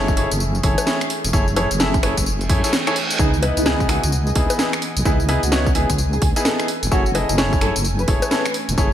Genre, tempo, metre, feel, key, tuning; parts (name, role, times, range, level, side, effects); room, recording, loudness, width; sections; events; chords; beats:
UK garage, two-step garage; 129 BPM; 4/4; swing 62% on 16ths; A4 = 440 Hz
warm analog pad; sustained chords; 0.0-8.9 s; E3 to G#5; -31 LUFS; equal; chorus, sidechain pumping
bright grand piano; stabs; 0.0-8.9 s; B3 to E5; -23 LUFS; left 1 dB; ping-pong delay
deep soft wobble bass; bass; 0.0-8.9 s; E1 to F#2; -21 LUFS; equal; chorus
electronic kick drum; drums; 0.1-8.9 s; -20 LUFS; equal; overdrive
house drum kit; drums; 0.1-8.9 s; bongos, finger snaps, hi-hat, snare drum, tambourine; -22 LUFS; equal; overdrive
reverse cymbal; sound effects; 2.5-3.2 s; -26 LUFS; right 3 dB
nylon-string guitar; melody; 3.2-8.9 s; D#4 to B4; -27 LUFS; equal; ensemble chorus, ping-pong delay
light reverb; bright 1980s-style digital production; -16 LUFS; side -10 dB against mid
0.0-8.9 A section
reverse cymbal 2.5-3.2
0.0 F#m9; 3.2 C#m9; 6.7 F#m9
0.40 0.87 | 1.33 1.80 2.26 2.73 | 3.19 3.66 4.12 4.59 | 5.05 5.52 5.99 6.45 | 6.92 7.38 7.85 8.31 | 8.78